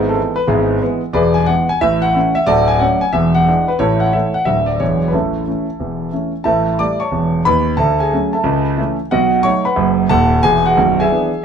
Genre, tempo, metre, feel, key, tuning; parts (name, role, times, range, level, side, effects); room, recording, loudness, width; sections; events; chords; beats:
jazz, stride piano; 181 BPM; 4/4; swing 65% on 8ths; A major; A4 = 442 Hz
warm concert grand piano; solo; 0.0-11.4 s; B0 to D6; -13 LUFS; equal
moderate studio reverb, RT60 0.5 s; band playing live in one room; -13 LUFS; side -7 dB against mid
0.0-6.5 A section; 6.5-11.4 B section
0.0 E/G#; 1.2 E; 1.8 A; 2.5 Dmaj7; 3.1 E7; 3.8 A; 4.5 D; 4.8 E9; 5.1 A; 6.5 A7; 7.8 Dmaj7; 8.4 A/C#; 9.1 B7; 10.4 E7
0.17 0.50 0.83 | 1.16 1.49 1.82 2.15 | 2.48 2.82 3.15 3.48 | 3.81 4.14 4.47 4.81 | 5.14 5.47 5.80 6.13 | 6.46 6.79 7.13 7.46 | 7.79 8.12 8.45 8.78 | 9.11 9.44 9.77 10.11 | 10.44 10.77 11.10 11.43